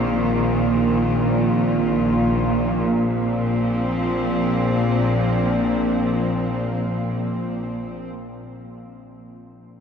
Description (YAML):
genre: dark ambient drone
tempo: free time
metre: none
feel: none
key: unclear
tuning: A4 = 440 Hz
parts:
  - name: warm studio cello section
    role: sustained chords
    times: 0.0-8.1 s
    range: Bb2 to F4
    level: -23 LUFS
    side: left 1 dB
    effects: none
  - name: bowed-like drone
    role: drone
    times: 0.0-7.7 s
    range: Bb1 to Bb2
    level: -21 LUFS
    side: right 1 dB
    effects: built-in reverb
room: wet cathedral reverb, RT60 6.5 s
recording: cassette tape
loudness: -18 LUFS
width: side -7 dB against mid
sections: 0.0-2.8 A section; 2.8-7.8 B section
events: none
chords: 0.0 Eb5/Bb; 2.8 Bb5